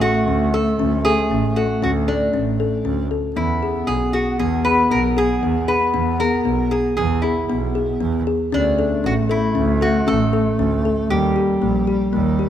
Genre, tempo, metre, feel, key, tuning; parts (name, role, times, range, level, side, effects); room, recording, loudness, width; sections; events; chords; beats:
contemporary instrumental, contemporary; 116 BPM; 5/4; straight; A4 = 438 Hz
lap resonator guitar; melody; 0.0-12.5 s; D4 to B4; -22 LUFS; equal
breathy clarinet; second line; 0.0-12.5 s; G3 to B3; -23 LUFS; equal
kalimba; arpeggios; 0.0-12.5 s; A#3 to A4; -22 LUFS; left 6 dB
clear double bass; bass; 0.0-12.5 s; A1 to E2; -23 LUFS; right 4 dB
light reverb; close, detailed microphones; -16 LUFS; side -10 dB against mid
0.0-12.5 A section
0.0 Dmaj7; 3.4 E; 8.5 D5; 11.1 D#
0.26 | 0.78 1.30 1.82 2.33 2.85 | 3.37 3.88 4.40 4.92 5.43 | 5.95 6.46 6.98 7.49 8.01 | 8.53 9.04 9.56 10.07 10.59 | 11.11 11.62 12.14